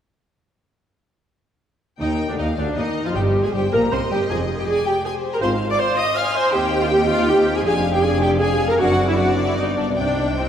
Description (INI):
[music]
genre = quick classical-period movement for symphony orchestra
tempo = 158 BPM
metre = 3/4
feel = rubato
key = unclear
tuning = A4 = 440 Hz
[part]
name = rich studio violin section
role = melody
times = 2.0-10.5 s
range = C5 to Ab5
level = -29 LUFS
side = left 5 dB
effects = none
[part]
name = rich studio violin section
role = second line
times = 2.0-10.5 s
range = C5 to F6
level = -26 LUFS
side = left 2 dB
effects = none
[part]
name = rich studio viola section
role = accompaniment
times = 2.0-10.5 s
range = C4 to F5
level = -20 LUFS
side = right 1 dB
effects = none
[part]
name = dark French horn section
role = sustained chords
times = 2.0-10.5 s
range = D3 to F4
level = -26 LUFS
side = left 3 dB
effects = none
[part]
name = dark studio double bass section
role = bass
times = 2.0-10.5 s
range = F1 to Eb2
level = -26 LUFS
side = right 2 dB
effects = none
[part]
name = rich studio cello section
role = bass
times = 2.0-10.5 s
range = D2 to C3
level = -27 LUFS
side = right 1 dB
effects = none
[sound]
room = wet concert hall reverb, RT60 2.5 s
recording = none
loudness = -17 LUFS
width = side -9 dB against mid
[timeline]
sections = 2.0-10.5 A section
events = none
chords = 2.0 Ebmaj9/D; 3.1 Cm/G; 4.3 F5; 5.4 Fm/Ab; 6.5 Cm/Eb; 7.7 Fm69; 8.8 D7/F#; 9.6 G; 10.0 Cm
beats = | 2.00 2.39 2.77 | 3.15 3.53 3.92 | 4.30 4.67 5.04 | 5.42 5.79 6.16 | 6.53 6.91 7.28 | 7.65 8.03 8.41 | 8.79 9.18 9.57 | 9.98 10.39